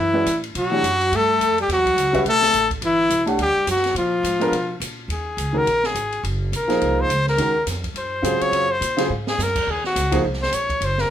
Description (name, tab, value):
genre	modal jazz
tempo	210 BPM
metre	4/4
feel	swing 59% on 8ths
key	Eb dorian from 5.1 s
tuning	A4 = 444 Hz
part	bright trumpet	melody	0.0-11.1 s	E4 to Db5	-20 LUFS	left 2 dB	none
part	warm tenor saxophone	second line	0.0-4.8 s	E3 to A3	-25 LUFS	right 5 dB	none
part	upright bass	bass	0.0-11.1 s	Gb1 to B2	-27 LUFS	right 1 dB	none
part	warm concert grand piano	accompaniment	0.1-10.2 s	Db3 to F#5	-22 LUFS	right 1 dB	none
part	open jazz drum kit	drums	0.3-11.0 s	crash cymbal, hi-hat, kick drum, ride cymbal, snare drum	-30 LUFS	equal	none
room	moderate studio reverb, RT60 0.6 s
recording	minimal, uncompressed stereo recording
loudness	-18 LUFS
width	side -10 dB against mid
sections	0.0-5.1 A section; 5.1-11.1 B section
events	trumpet solo 5.1-11.1; drum fill 9.1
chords	0.0 F#m9; 0.5 Em9; 4.0 A#7(no3); 5.1 Ebm11